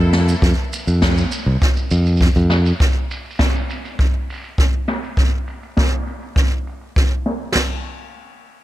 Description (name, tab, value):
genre	folktronica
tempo	101 BPM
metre	4/4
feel	straight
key	F major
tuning	A4 = 440 Hz
part	concert harp	arpeggios	0.0-1.0 s	Bb3 to C4	-41 LUFS	equal	none
part	fingered electric bass	bass	0.0-2.7 s	C2 to F2	-15 LUFS	equal	tube saturation
part	snare drum and shaker	drums	0.1-7.5 s	none	-25 LUFS	equal	low-pass filter on hats, low-pass filter on snare, low-pass filter on perc, low-pass filter on room
part	jazz brush drum kit	drums	0.4-7.7 s	crash cymbal, kick drum, snare drum	-17 LUFS	equal	none
room	light reverb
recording	none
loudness	-16 LUFS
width	side -15 dB against mid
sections	0.0-7.6 A section; 7.6-8.6 B section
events	filter sweep on drum 0.0-7.6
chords	0.0 Fmaj7; 2.8 N.C.